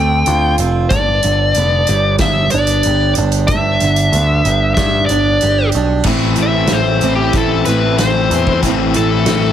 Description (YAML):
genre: quiet-loud alternative rock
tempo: 93 BPM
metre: 4/4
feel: straight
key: A minor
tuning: A4 = 440 Hz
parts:
  - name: dark smooth lead guitar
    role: melody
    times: 0.0-9.5 s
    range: G4 to G5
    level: -16 LUFS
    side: left 2 dB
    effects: overdrive, tape echo
  - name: picked steel-string acoustic guitar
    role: arpeggios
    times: 0.0-9.5 s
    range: G2 to G4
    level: -19 LUFS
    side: right 7 dB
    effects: none
  - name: overdriven picked electric bass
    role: bass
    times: 0.0-9.5 s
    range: F1 to G2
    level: -17 LUFS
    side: equal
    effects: none
  - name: loose indie drum kit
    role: drums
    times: 0.3-9.4 s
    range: crash cymbal, hi-hat, kick drum, snare drum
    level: -20 LUFS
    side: equal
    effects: none
  - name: crunchy overdriven guitar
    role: riff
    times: 6.1-9.5 s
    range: A2 to E4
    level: -17 LUFS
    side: left 12 dB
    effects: none
room: light reverb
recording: heavily compressed radio sound, multiband compression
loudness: -11 LUFS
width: side -10 dB against mid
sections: 0.0-6.1 A section; 6.1-9.5 B section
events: half time 0.0-6.1; lead electric guitar solo 6.1-9.5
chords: 0.0 Dm7; 0.9 G; 6.1 Am